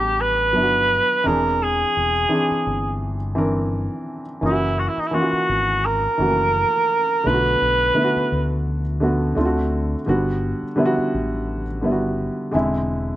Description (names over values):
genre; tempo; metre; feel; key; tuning
R&B, neo-soul; 85 BPM; 4/4; swing 55% on 16ths; G major; A4 = 438 Hz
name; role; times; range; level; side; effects
mellow cor anglais; melody; 0.0-8.7 s; Eb4 to B4; -19 LUFS; right 1 dB; slapback echo
dark baby grand piano; accompaniment; 0.0-13.2 s; D3 to Bb4; -22 LUFS; equal; slapback echo
deep dub fingered electric bass; bass; 0.0-13.1 s; E1 to D2; -25 LUFS; left 1 dB; none
room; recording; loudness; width
little or no reverb; recorded outdoors, with no room sound; -18 LUFS; side -14 dB against mid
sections
0.0-13.2 A section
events
none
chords
0.0 Gmaj7; 1.2 E7alt; 4.4 F#7; 7.2 Bm7; 9.4 D7; 10.1 Gmaj7; 12.5 E7b13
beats
0.18 0.89 | 1.59 2.30 3.01 3.71 | 4.42 5.12 5.83 6.54 | 7.24 7.95 8.65 9.36 | 10.06 10.77 11.48 12.18 | 12.89